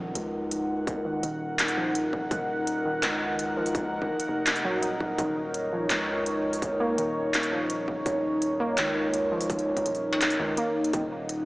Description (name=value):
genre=half-time drum and bass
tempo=167 BPM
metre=4/4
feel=half-time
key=Eb minor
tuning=A4 = 440 Hz
part: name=dark analog pad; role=sustained chords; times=0.0-11.5 s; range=Eb4 to Gb5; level=-28 LUFS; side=equal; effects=chorus, phaser, sidechain pumping
part: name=warbly dusty pluck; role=arpeggios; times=0.0-11.1 s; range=Eb3 to Eb4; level=-34 LUFS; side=right 1 dB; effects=chorus, tape echo
part: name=long sustained 808-style bass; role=bass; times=0.0-11.5 s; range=Eb1 to Db2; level=-37 LUFS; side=equal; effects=none
part: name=impact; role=sound effects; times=0.0-0.9 s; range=none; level=-50 LUFS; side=equal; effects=none
part: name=industrial drum kit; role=drums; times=0.2-11.4 s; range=handclaps, hi-hat, struck metal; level=-29 LUFS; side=equal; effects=none
part: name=electronic kick drum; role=drums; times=0.9-11.0 s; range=none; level=-34 LUFS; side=equal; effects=distortion
part: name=backwards swelling texture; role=texture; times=11.3-11.5 s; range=Eb4 to Eb5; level=-57 LUFS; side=left 1 dB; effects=none
room=moderate huge ambient reverb, RT60 5.1 s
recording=small speaker sound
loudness=-25 LUFS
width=side -21 dB against mid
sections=0.0-11.5 A section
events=impact 0.0-0.9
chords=0.0 Ebm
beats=0.15 0.52 | 0.87 1.23 1.59 1.95 | 2.31 2.67 3.03 3.39 | 3.75 4.11 4.47 4.83 | 5.18 5.54 5.90 6.26 | 6.62 6.98 7.34 7.70 | 8.06 8.42 8.78 9.14 | 9.50 9.86 10.21 10.57 | 10.93 11.29